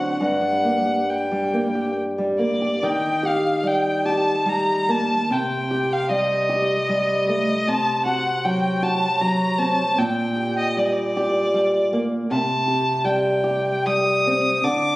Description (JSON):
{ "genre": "romantic duo for violin and classical guitar", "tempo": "66-81 BPM", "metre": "3/4", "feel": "rubato", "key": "G minor", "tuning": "A4 = 440 Hz", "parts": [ { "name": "rich violin", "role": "melody", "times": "0.0-15.0 s", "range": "D5 to Eb6", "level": "-22 LUFS", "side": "left 1 dB", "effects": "none" }, { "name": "nylon-string guitar", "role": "accompaniment", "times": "0.0-15.0 s", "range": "G2 to G4", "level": "-21 LUFS", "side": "equal", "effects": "none" } ], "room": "moderate scoring stage reverb, RT60 1.8 s", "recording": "recorded on a phone in the room, club reverb, compression", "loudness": "-19 LUFS", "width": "side -18 dB against mid", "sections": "0.0-2.8 A section; 2.8-15.0 B section", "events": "none", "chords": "0.2 Gm; 2.8 Eb; 5.3 Am7b5/C; 7.7 F#dim/C; 10.0 Gm/Bb; 12.3 Cm", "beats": "| 0.21 1.09 1.96 | 2.85 3.66 4.48 | 5.30 6.09 6.89 | 7.67 8.44 9.21 | 9.97 10.76 11.54 | 12.29 13.04 13.86 | 14.63" }